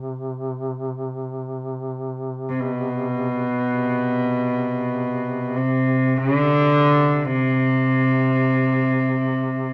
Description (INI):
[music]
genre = caucasian folk, Caucasian lament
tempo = free time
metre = none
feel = none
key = unclear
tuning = A4 = 440 Hz
[part]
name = mellow duduk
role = drone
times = 0.0-9.7 s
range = C3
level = -32 LUFS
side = equal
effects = none
[part]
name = rich cello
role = melody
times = 2.5-9.7 s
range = B2 to D3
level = -21 LUFS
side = equal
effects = none
[sound]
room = moderate studio reverb, RT60 0.7 s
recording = none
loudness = -21 LUFS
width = mono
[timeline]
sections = 0.0-9.7 A section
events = none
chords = none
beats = free time